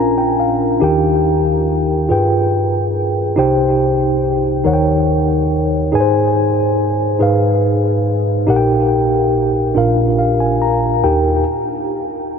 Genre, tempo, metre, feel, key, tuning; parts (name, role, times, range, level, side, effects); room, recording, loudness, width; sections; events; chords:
gospel; 47 BPM (dotted quarters); 6/8; straight; Eb major; A4 = 439 Hz
mellow tine electric piano; solo; 0.0-11.4 s; Bb1 to Bb5; -13 LUFS; equal; medium stereo tremolo, ping-pong delay
wet huge ambient reverb, RT60 7.4 s; dreamy mix soaked in reverb; -13 LUFS; side -6 dB against mid
0.0-11.0 A section; 11.0-12.4 B section
tine electric piano fill 0.0-0.8, 9.8-11.0
0.0 Bb; 0.8 Eb; 2.1 G7b9; 3.4 Cm; 4.6 Eb7; 5.9 Ab; 7.2 Abm6; 8.5 Eb/Bb; 9.8 Bb; 11.0 Eb